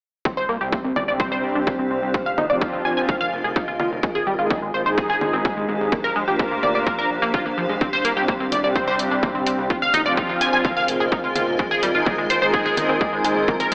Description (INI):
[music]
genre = melodic techno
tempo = 127 BPM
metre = 4/4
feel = straight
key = C minor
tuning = A4 = 439 Hz
[part]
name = tight sequenced synth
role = arpeggios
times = 0.3-13.7 s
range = F3 to Ab5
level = -24 LUFS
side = equal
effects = chorus, phaser, sidechain pumping, tape echo
[part]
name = electronic congas and hi-hat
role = drums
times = 0.3-13.7 s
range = none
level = -32 LUFS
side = equal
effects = overdrive, studio reverb
[part]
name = electronic kick drum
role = drums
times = 0.3-13.6 s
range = none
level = -26 LUFS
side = equal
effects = overdrive, studio reverb
[part]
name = granular cloud pad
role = texture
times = 1.1-13.7 s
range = C4 to Ab5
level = -30 LUFS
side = equal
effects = built-in reverb, sidechain pumping
[part]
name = gritty driven synth bass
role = bass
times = 0.4-13.7 s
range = F1 to D2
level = -35 LUFS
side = equal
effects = sidechain pumping
[part]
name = brassy analog pad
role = stabs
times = 0.6-13.5 s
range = C3 to Bb4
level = -28 LUFS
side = equal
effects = chorus, sidechain pumping, tape echo
[part]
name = deep dark ambient pad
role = sustained chords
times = 9.2-13.7 s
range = Ab3 to D5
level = -32 LUFS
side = equal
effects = none
[sound]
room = moderate lush hall reverb, RT60 1.9 s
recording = AM radio sound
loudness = -21 LUFS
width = mono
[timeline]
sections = 0.3-13.7 A section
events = none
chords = 0.3 Csus2; 2.1 Fm; 4.0 Ab; 5.9 Bb; 7.8 Csus2; 9.7 Fm; 11.6 Ab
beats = | 0.25 0.72 1.20 1.67 | 2.14 2.62 3.09 3.56 | 4.03 4.50 4.98 5.45 | 5.92 6.39 6.87 7.34 | 7.81 8.28 8.76 9.23 | 9.70 10.17 10.65 11.12 | 11.59 12.06 12.54 13.01 | 13.48